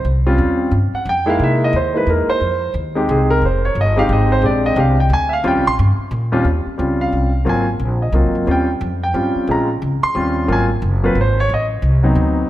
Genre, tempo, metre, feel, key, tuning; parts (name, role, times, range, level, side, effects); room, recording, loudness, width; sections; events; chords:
jazz piano trio; 178 BPM; 3/4; swing 62% on 8ths; Eb mixolydian; A4 = 440 Hz
warm concert grand piano; melody; 0.0-12.5 s; Eb2 to C6; -17 LUFS; equal
upright bass; bass; 0.0-12.5 s; F1 to C3; -18 LUFS; equal
moderate concert hall reverb, RT60 2.0 s; -14 LUFS; side -14 dB against mid
0.0-6.4 A section; 6.4-12.5 A section
grand piano solo 0.0-12.5
0.4 Eb13; 1.4 C7alt; 2.4 Fm7; 4.4 Bb13; 5.4 Eb13; 6.1 Bbsus2; 6.4 Eb13; 7.5 Ab13; 8.5 Eb13; 9.5 Bbm7; 10.1 Eb13; 10.5 Ab13; 11.5 Adim7